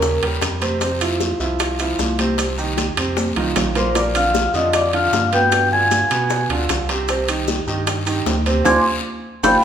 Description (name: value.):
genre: Afro-Cuban jazz.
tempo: 153 BPM.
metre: 4/4.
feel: straight.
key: C minor.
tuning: A4 = 439 Hz.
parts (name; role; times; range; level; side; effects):
vibraphone with medium hard mallets; melody; 0.0-0.2, 3.8-9.6 s; Bb4 to D6; -20 LUFS; equal; none.
breathy mellow silver concert flute; second line; 0.0-0.2, 3.8-9.6 s; Bb5 to Ab6; -20 LUFS; left 3 dB; none.
clear baby grand piano; accompaniment; 0.0-9.6 s; Bb2 to Db5; -22 LUFS; right 4 dB; none.
warm sub bass; bass; 0.0-9.6 s; G1 to B2; -25 LUFS; equal; none.
bongos; percussion; 0.0-9.5 s; none; -28 LUFS; left 8 dB; none.
congas; percussion; 0.0-9.5 s; none; -27 LUFS; equal; none.
guiro; percussion; 0.0-9.5 s; none; -30 LUFS; left 5 dB; none.
maracas; percussion; 0.0-9.5 s; none; -32 LUFS; right 3 dB; none.
timbales; percussion; 0.2-9.5 s; none; -26 LUFS; right 6 dB; none.
room: wet recital hall reverb, RT60 1.4 s.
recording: recorded in a church or concert hall.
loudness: -16 LUFS.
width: side -9 dB against mid.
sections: 0.0-9.6 A section.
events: drum fill 3.2-4.0, 9.2-9.6; band accent 8.7-9.6.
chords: 0.0 Eb9; 0.8 F5; 2.4 Cm; 3.2 F5; 4.0 Bb; 5.5 G7b9; 7.1 Cm; 8.7 Dm7b5.